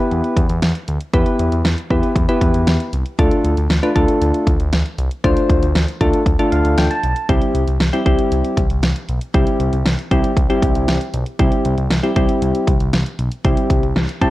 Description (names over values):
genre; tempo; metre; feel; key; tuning
synth-pop; 117 BPM; 4/4; straight; unclear; A4 = 440 Hz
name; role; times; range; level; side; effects
soft electric-piano-like synth keys; accompaniment; 0.0-14.3 s; G3 to A5; -18 LUFS; left 1 dB; chorus
smooth gliding synth bass; bass; 0.1-14.3 s; B1 to E2; -20 LUFS; equal; tube saturation
pop drum kit; drums; 0.1-14.3 s; hi-hat, kick drum, snare drum; -18 LUFS; equal; none
room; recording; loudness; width
light reverb; worn, warbling old tape, cassette tape, warbly pitch drift; -14 LUFS; side -16 dB against mid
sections
0.0-14.3 A section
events
synth keys fill 6.3-7.3, 14.0-14.3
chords
0.0 Em; 3.2 Dm7; 7.3 C